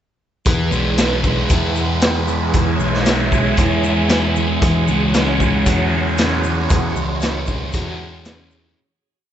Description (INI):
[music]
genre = psychedelic rock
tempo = 115 BPM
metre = 4/4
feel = straight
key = E major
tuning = A4 = 439 Hz
[part]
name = phased string machine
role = sustained chords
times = 0.5-8.7 s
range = E4 to C#5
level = -24 LUFS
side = right 5 dB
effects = ensemble chorus, phaser
[part]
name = fuzz guitar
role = riff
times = 0.5-8.8 s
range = E3 to F#4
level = -19 LUFS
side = equal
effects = distortion, phaser
[part]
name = growling picked electric bass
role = bass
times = 0.5-8.7 s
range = B1 to E2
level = -22 LUFS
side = equal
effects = overdrive
[part]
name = raw garage drum kit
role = drums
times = 0.5-8.4 s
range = hi-hat, kick drum, snare drum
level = -20 LUFS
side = equal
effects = none
[part]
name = egg shaker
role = percussion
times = 0.5-8.6 s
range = none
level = -38 LUFS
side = left 9 dB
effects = none
[sound]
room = light reverb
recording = nothing above 7.9 kHz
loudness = -15 LUFS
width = side -10 dB against mid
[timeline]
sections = 0.5-8.8 groove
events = fade-out 6.7-8.8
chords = 0.5 E; 4.6 F#sus2